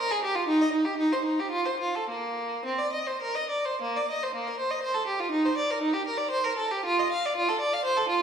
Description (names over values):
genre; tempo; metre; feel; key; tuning
classical, baroque-style suite movement for unaccompanied violin; 96-125 BPM; 3/4; rubato; Bb major; A4 = 440 Hz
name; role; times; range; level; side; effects
clear violin; solo; 0.0-8.2 s; Bb3 to F5; -25 LUFS; right 1 dB; none
room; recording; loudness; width
wet recital hall reverb, RT60 1.6 s; recorded in a church or concert hall, studio reverb; -25 LUFS; side -7 dB against mid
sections
0.0-3.8 A section; 3.8-8.2 B section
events
none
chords
none